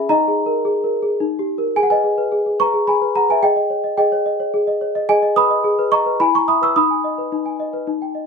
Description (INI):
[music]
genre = classical, lullaby for celesta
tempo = 108 BPM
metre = 3/4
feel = straight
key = G# minor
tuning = A4 = 440 Hz
[part]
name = small celesta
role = solo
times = 0.0-8.3 s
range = C#4 to E6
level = -15 LUFS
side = equal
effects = none
[sound]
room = light reverb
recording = close, detailed microphones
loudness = -15 LUFS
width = side -5 dB against mid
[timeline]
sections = 0.0-1.8 A section; 1.8-8.3 B section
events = none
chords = 0.1 D#sus4; 1.2 D#; 1.8 G#m; 3.4 D#7/G#; 5.1 G#m; 6.2 E; 6.8 G#m/D#